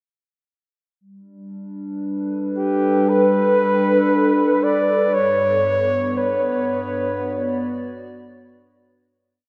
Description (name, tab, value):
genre	ambient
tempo	58 BPM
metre	4/4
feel	straight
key	G lydian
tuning	A4 = 440 Hz
part	warbly tape-like pad	sustained chords	1.6-9.3 s	G2 to D5	-23 LUFS	equal	chorus, built-in reverb
part	mellow flugelhorn	melody	2.6-8.3 s	G4 to D5	-22 LUFS	equal	analog delay
room	wet huge ambient reverb, RT60 8.5 s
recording	dreamy mix soaked in reverb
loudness	-19 LUFS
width	mono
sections	1.0-9.3 A section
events	fade-out 5.2-9.3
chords	1.0 Gadd9; 5.2 Bm/G